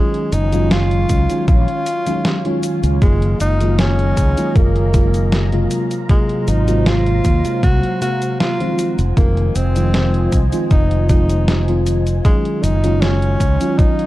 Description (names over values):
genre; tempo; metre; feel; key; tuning
vaporwave; 78 BPM; 4/4; straight; Eb dorian; A4 = 439 Hz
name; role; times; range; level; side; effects
breathy tenor saxophone; melody; 0.0-14.1 s; Ab3 to Gb4; -22 LUFS; equal; tape echo
FM electric piano with soft pad layer; accompaniment; 0.0-14.1 s; C3 to F5; -20 LUFS; equal; tremolo, wide subtle chorus, analog delay
soft string machine; sustained chords; 0.0-14.1 s; Gb3 to Bb5; -29 LUFS; equal; ensemble chorus, vintage 12-bit sampler grit
detuned 8-bit digital drum machine; drums; 0.1-14.1 s; cabasa, hi-hat, snare drum; -22 LUFS; equal; vintage 12-bit sampler grit
mellow fretless electric bass; bass; 0.3-13.6 s; F1 to Eb2; -17 LUFS; equal; none
electronic kick drum; drums; 1.1-13.9 s; none; -14 LUFS; equal; vintage 12-bit sampler grit
room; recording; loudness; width
digital ambience; dark, warm production; -13 LUFS; side -16 dB against mid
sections
0.0-14.1 A section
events
none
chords
0.0 Ebm11/Gb; 3.0 Gbmaj13; 5.7 Ab13; 8.8 Fm7; 12.2 Ebm11/Gb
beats
0.71 1.48 2.25 | 3.02 3.79 4.56 5.33 | 6.09 6.86 7.63 8.40 | 9.17 9.94 10.71 11.48 | 12.25 13.02 13.79